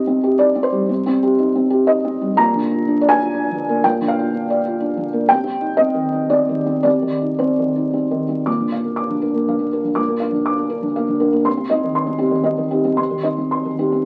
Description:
neoclassical minimalist piano; 109-126 BPM; 3/4; rubato; C minor; A4 = 440 Hz
felt-muted upright piano; solo; 0.0-14.1 s; Bb2 to D6; -18 LUFS; equal
moderate small room ambience, RT60 0.5 s; very old 78 rpm record, vinyl crackle; -18 LUFS; mono
0.0-8.5 A section; 8.5-14.1 B section
0.0 Cm; 2.4 Bb; 5.3 Cm; 8.5 Bb; 11.5 Cm

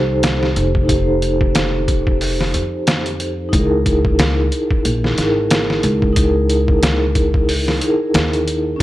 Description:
trip hop; 91 BPM; 4/4; swing 57% on 16ths; A4 = 440 Hz
vibraphone with soft mallets; accompaniment; 0.0-8.8 s; Db4 to C5; -18 LUFS; equal; tremolo, tape echo
upright bass; bass; 0.0-8.8 s; F1 to F2; -19 LUFS; equal
trip hop sampler-style drum kit; drums; 0.2-8.8 s; hi-hat, kick drum, snare drum; -18 LUFS; equal; overdrive
studio ambience; dry, gritty hardware recording; -14 LUFS; side -15 dB against mid
0.0-8.8 A section
0.0 F7; 3.5 Dbm6

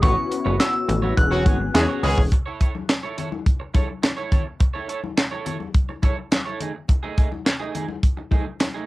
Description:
early-eighties boogie funk; 105 BPM; 4/4; straight; A4 = 440 Hz
glassy synth bell; melody; 0.0-2.0 s; C#6 to F#6; -26 LUFS; equal; chorus, cassette tape
mellow synth brass; accompaniment; 0.0-2.3 s; B3 to G#4; -28 LUFS; left 6 dB; chorus, cassette tape
electric guitar through a small old amp; riff; 0.0-8.9 s; A3 to C#5; -31 LUFS; right 6 dB; lush chorus, cassette tape
plucky analog bass; bass; 0.0-2.3 s; E1 to E2; -22 LUFS; equal
tight funk drum kit; drums; 0.0-8.7 s; handclaps, hi-hat, kick drum, snare drum; -20 LUFS; equal
congas; percussion; 0.0-8.7 s; -33 LUFS; left 5 dB
clear horn section; second line; 1.3-2.2 s; F#3 to G#4; -22 LUFS; equal; cassette tape
light reverb; home recording on cassette; -20 LUFS; side -19 dB against mid
0.0-2.3 A section; 2.3-8.9 B section
band accent 0.0-2.3
0.0 A69; 1.2 E69; 2.3 A/E; 6.6 G#5

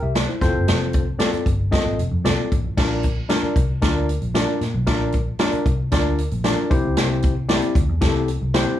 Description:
uptempo 1960s-style soul; 114 BPM; 4/4; straight; Bb major; A4 = 439 Hz
tine electric piano; accompaniment; 0.0-8.8 s; C4 to E5; -23 LUFS; left 2 dB; overdrive
vintage muted picked electric bass; bass; 0.0-8.6 s; F1 to Bb2; -23 LUFS; equal
swinging big-band drum kit; drums; 0.2-8.7 s; crash cymbal, hi-hat, kick drum, snare drum; -21 LUFS; equal
light reverb; small room ambience; -18 LUFS; side -11 dB against mid
0.0-2.8 A section; 2.8-8.8 B section
0.4 F; 2.8 Bb; 6.7 C

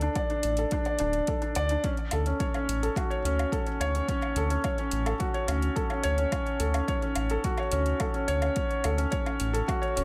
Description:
piano and strings electronica; 107 BPM; 4/4; straight; A4 = 441 Hz
felt-muted upright piano; riff; 0.0-10.0 s; C#4 to D5; -31 LUFS; equal; low-pass filter, delay
round analog bass; bass; 0.0-10.0 s; D1 to D2; -31 LUFS; equal; sidechain pumping
electronic hi-hat and woodblock; drums; 0.0-10.0 s; -39 LUFS; equal; overdrive, small room ambience
electronic kick drum; drums; 0.2-9.8 s; -34 LUFS; equal; overdrive, small room ambience
light reverb; -28 LUFS; mono
0.0-10.0 A section
0.0 D5; 1.8 F#m

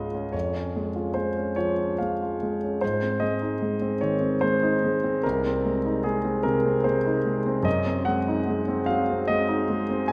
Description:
classical, romantic nocturne for solo piano; 49 BPM (dotted quarters); 12/8; rubato; A4 = 445 Hz
warm concert grand piano; solo; 0.0-10.1 s; C2 to Ab5; -25 LUFS; equal
wet concert hall reverb, RT60 2.1 s; -25 LUFS; mono
0.0-10.1 A section
0.3 Db/F; 2.8 Ab; 5.2 Ab/C; 7.7 Ab7/Gb

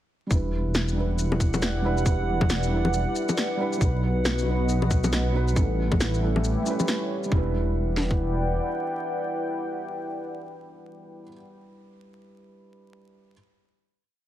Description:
future garage; 137 BPM; 4/4; swing 61% on 16ths; E dorian; A4 = 441 Hz
felt-muted upright piano; accompaniment; 0.3-13.3 s; F#3 to B4; -31 LUFS; right 2 dB; sidechain pumping, tape echo
dark analog pad; sustained chords; 0.3-11.6 s; A3 to G5; -31 LUFS; left 1 dB; chorus, sidechain pumping
dark detuned saw bass; bass; 0.3-8.6 s; E1 to B1; -26 LUFS; equal; tube saturation, sidechain pumping
electronic shaker, snare drum and bongos; drums; 0.3-7.3 s; -28 LUFS; left 1 dB; overdrive, small room reverb
garage drum kit; drums; 0.3-8.2 s; kick drum, snare drum; -23 LUFS; equal; overdrive, small room reverb
drifting glass-harmonics texture; texture; 0.9-7.3 s; F#5; -37 LUFS; right 6 dB; chorus, built-in reverb
light reverb; vinyl crackle; -23 LUFS; side -12 dB against mid
0.3-7.3 groove; 7.3-10.8 final chord
0.3 Em7; 3.8 B; 5.6 A7; 7.3 Em7

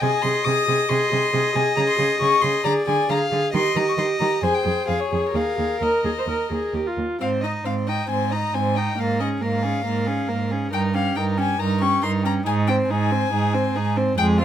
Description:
quick classical-period movement for string quartet; 136 BPM; 4/4; rubato; Ab major; A4 = 440 Hz
rich violin; melody; 0.0-14.4 s; Db5 to Eb6; -25 LUFS; left 5 dB
rich violin; second line; 0.0-14.4 s; F4 to F5; -27 LUFS; left 2 dB
warm viola; accompaniment; 0.0-14.4 s; Ab3 to C5; -24 LUFS; right 1 dB
dark cello; bass; 0.0-14.4 s; Eb2 to Eb3; -25 LUFS; right 4 dB
light reverb; -19 LUFS; side -10 dB against mid
0.0-7.2 A section; 7.2-14.4 B section
0.0 Ab/C; 1.8 Bbm11/Db (rootless); 2.6 Ddim; 3.5 Eb; 4.4 Fm; 5.3 Ebsus4; 6.3 Eb; 7.2 Ab; 9.0 Bbm7/Ab; 10.7 Eb7/G; 12.5 Ab

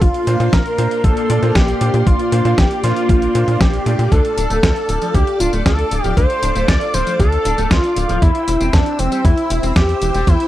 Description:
italo disco; 117 BPM; 4/4; straight; A4 = 440 Hz
wide unison lead; melody; 0.0-10.5 s; C4 to D5; -18 LUFS; equal; tape echo
string machine, full ensemble; sustained chords; 0.0-10.5 s; Bb3 to E6; -25 LUFS; left 1 dB; ensemble chorus
tight sequencer bass; bass; 0.0-10.4 s; D1 to Bb2; -18 LUFS; equal
dusty soul sampler-style drum kit; drums; 0.0-10.5 s; hi-hat, snare drum, tambourine; -21 LUFS; equal
electronic kick drum; drums; 0.0-10.4 s; -15 LUFS; equal
bright electric grand piano; stabs; 0.3-4.3 s; A3 to D5; -25 LUFS; right 3 dB
electric guitar with an envelope filter; arpeggios; 4.1-10.4 s; D3 to E4; -26 LUFS; left 2 dB; tape echo
little or no reverb; dry, close 1970s-style studio recording; -13 LUFS; side -14 dB against mid
0.0-10.5 A section
0.0 Bbadd9; 4.1 Dm; 8.2 C/E

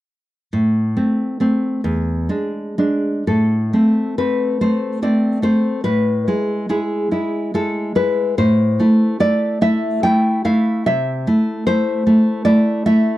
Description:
romantic piece for solo classical guitar; 58-77 BPM; 3/4; rubato; A minor; A4 = 440 Hz
nylon-string guitar; solo; 0.5-13.2 s; E2 to G5; -15 LUFS; equal
studio ambience; dry, close 1970s-style studio recording; -15 LUFS; side -15 dB against mid
0.5-3.3 A section; 3.3-13.2 B section
0.5 Am; 1.8 E7; 3.3 Am; 5.8 E/A; 8.4 Am; 10.9 Am/C

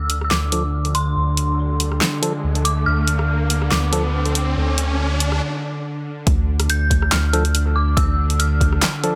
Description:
deep dubstep; 141 BPM; 4/4; swing 54% on 16ths, half-time; D minor; A4 = 440 Hz
dark detuned synth bell; melody; 0.0-9.2 s; C6 to G6; -28 LUFS; equal; chorus, low-pass filter, dub echo
bowed-like drone; sustained chords; 0.0-9.2 s; D3 to D4; -28 LUFS; equal; built-in reverb, vintage 12-bit sampler grit
soft dub sub bass; bass; 0.0-8.8 s; D2; -22 LUFS; equal
riser; sound effects; 1.5-5.4 s; -30 LUFS; equal
deep house drum kit; drums; 0.1-9.1 s; handclaps, hi-hat, rim click, snare drum; -24 LUFS; equal
percussive organ stab; stabs; 0.5-4.0, 7.3-9.1 s; F3 to A4; -29 LUFS; equal; chorus, dub echo
electronic kick drum; drums; 6.3-8.7 s; -22 LUFS; equal
light reverb, digital ambience; -19 LUFS; mono
0.0-6.3 A section; 6.3-9.2 B section
build-up 0.0-6.3; filter sweep on synth stab 0.0-6.3; filter sweep on synth drone 0.0-6.3; filter sweep on synth bell 0.0-6.3; riser 1.5-5.4; break 5.4-6.3; drop 6.3-9.2
0.0 N.C.; 6.3 Dm

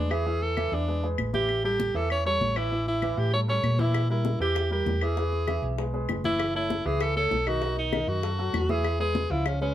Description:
Afro-Cuban jazz; 196 BPM; 4/4; straight; A4 = 445 Hz
bright alto saxophone; melody; 0.0-9.7 s; C#4 to C#5; -28 LUFS; equal
warm grand piano; accompaniment; 0.0-9.7 s; D#3 to F5; -32 LUFS; right 1 dB
hollow-body short-scale fingered electric bass; bass; 0.0-9.7 s; F#1 to A#2; -29 LUFS; equal
claves; percussion; 0.1-9.6 s; -36 LUFS; left 5 dB
congas; percussion; 0.1-9.7 s; -35 LUFS; left 2 dB
bongos; percussion; 3.9-9.7 s; -36 LUFS; left 9 dB
moderate studio ambience, RT60 0.5 s; band playing live in one room; -24 LUFS; side -12 dB against mid
0.0-9.7 A section
0.0 E7; 1.5 A7; 3.9 Edim; 5.2 E; 6.4 F#m7; 7.6 B7; 8.8 E

